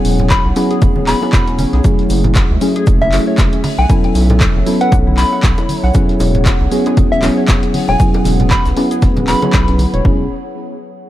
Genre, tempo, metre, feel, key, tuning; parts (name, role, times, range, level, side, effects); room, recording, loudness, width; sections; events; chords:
deep house; 117 BPM; 4/4; swing 57% on 16ths; E major; A4 = 440 Hz
warbly tape-like pad; sustained chords; 0.0-10.3 s; A3 to F#5; -26 LUFS; right 1 dB; chorus, built-in reverb, sidechain pumping
mellow FM electric piano; stabs; 0.0-10.3 s; F#3 to A4; -17 LUFS; equal; chorus, sidechain pumping, tape echo
round analog bass; bass; 0.0-10.3 s; E1 to C#2; -16 LUFS; equal; sidechain pumping
punchy analog drum machine; drums; 0.0-10.0 s; handclaps, hi-hat; -22 LUFS; equal
damped 70s drum kit; drums; 0.1-9.9 s; hi-hat, shaker, snare drum; -36 LUFS; left 4 dB; sidechain pumping on hats, high-pass filter on hats, high-pass filter on snare, sidechain pumping on perc, high-pass filter on perc, high-pass filter on room
congas and bongos; percussion; 0.2-9.9 s; -23 LUFS; right 2 dB
soft struck synth lead; melody; 0.3-9.8 s; E5 to B5; -20 LUFS; left 1 dB; chorus, vintage 12-bit sampler grit, ping-pong delay
warbly dusty pluck; arpeggios; 0.3-10.3 s; C#4 to F#5; -26 LUFS; left 2 dB; lush chorus, cassette tape, sidechain pumping, dub echo
electronic kick drum; drums; 0.3-10.2 s; -14 LUFS; equal
small room ambience; -10 LUFS; side -14 dB against mid
0.0-10.1 A section; 10.1-11.1 B section
drop 0.0-10.1
0.0 E69; 1.8 F#m9; 3.6 B7sus4; 5.9 E69